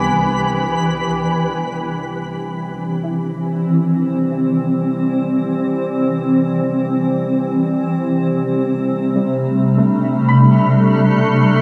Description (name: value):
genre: ambient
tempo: free time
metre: none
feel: none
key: C major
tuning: A4 = 442 Hz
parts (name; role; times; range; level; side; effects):
- granular cloud pad; sustained chords; 0.0-11.6 s; C2 to A4; -18 LUFS; equal; built-in reverb
- soft round pluck; arpeggios; 0.0-11.6 s; G3 to B5; -26 LUFS; equal; ensemble chorus, delay
- analog drone; drone; 0.0-11.6 s; C3 to G3; -27 LUFS; equal; chorus
- twinkling granular texture; texture; 0.0-0.7 s; B4 to B5; -28 LUFS; equal; built-in reverb
room: moderate huge ambient reverb, RT60 8.7 s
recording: cassette tape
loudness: -17 LUFS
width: mono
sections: 0.7-11.6 A section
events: fade-in on synth pluck 0.7-11.6; fade-in on synth drone 0.7-11.6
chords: 0.0 Cadd9; 0.7 C; 7.5 Gsus2/C